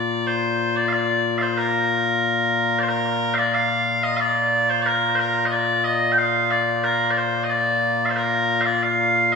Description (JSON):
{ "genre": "scottish traditional, Scottish pipe music", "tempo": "91 BPM", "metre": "2/4", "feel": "straight", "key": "Bb major", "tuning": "A4 = 440 Hz", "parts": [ { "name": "loud bright bagpipes", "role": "solo", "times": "0.0-9.4 s", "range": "Bb2 to G5", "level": "-18 LUFS", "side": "left 1 dB", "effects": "none" } ], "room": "wet concert hall reverb, RT60 2.3 s", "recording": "heard from further back in the room, studio ambience", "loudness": "-18 LUFS", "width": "side -5 dB against mid", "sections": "0.0-2.9 A section; 2.9-9.4 B section", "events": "none", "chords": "none" }